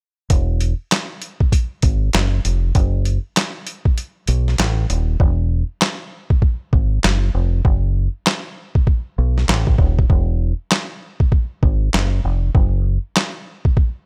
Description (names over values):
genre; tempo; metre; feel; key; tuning
hip hop, boom-bap hip-hop; 98 BPM; 4/4; swing 62% on 16ths; unclear; A4 = 439 Hz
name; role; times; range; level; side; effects
deep dub fingered electric bass; bass; 0.3-13.0 s; D#1 to B1; -20 LUFS; equal; none
boom bap sampler-style drum kit; drums; 0.3-13.9 s; handclaps, hi-hat, kick drum, snare drum; -19 LUFS; equal; none
room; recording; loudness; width
little or no reverb; none; -19 LUFS; mono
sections
0.3-5.2 A section; 5.2-14.1 B section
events
kick muted 4.0-5.2; hi-hats muted 5.2-14.1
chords
none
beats
| 0.30 0.91 1.53 2.14 | 2.75 3.36 3.98 4.59 | 5.20 5.81 6.42 7.04 | 7.65 8.26 8.87 9.49 | 10.10 10.71 11.32 11.94 | 12.55 13.16 13.77